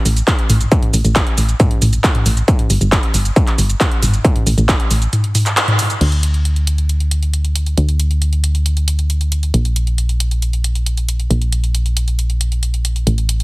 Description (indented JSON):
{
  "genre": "uplifting trance",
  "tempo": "136 BPM",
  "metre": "4/4",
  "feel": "straight",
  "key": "unclear",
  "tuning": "A4 = 441 Hz",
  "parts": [
    { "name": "solid FM bass", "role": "bass", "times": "0.1-13.4 s", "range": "G1 to D2", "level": "-15 LUFS", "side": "equal", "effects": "sidechain pumping" },
    { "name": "techno drum kit", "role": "drums", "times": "0.1-13.4 s", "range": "crash cymbal, handclaps, hi-hat, shaker, toms", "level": "-18 LUFS", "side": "equal", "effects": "overdrive, small room ambience" },
    { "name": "electronic kick drum", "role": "drums", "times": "0.3-4.8 s", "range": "none", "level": "-14 LUFS", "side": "equal", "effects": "distortion, overdrive, small room ambience" }
  ],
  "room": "little or no reverb",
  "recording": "heavily compressed radio sound, multiband compression",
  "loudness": "-13 LUFS",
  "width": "side -22 dB against mid",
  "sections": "0.0-6.0 A section; 6.0-13.4 B section",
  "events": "band accent 5.6",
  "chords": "none"
}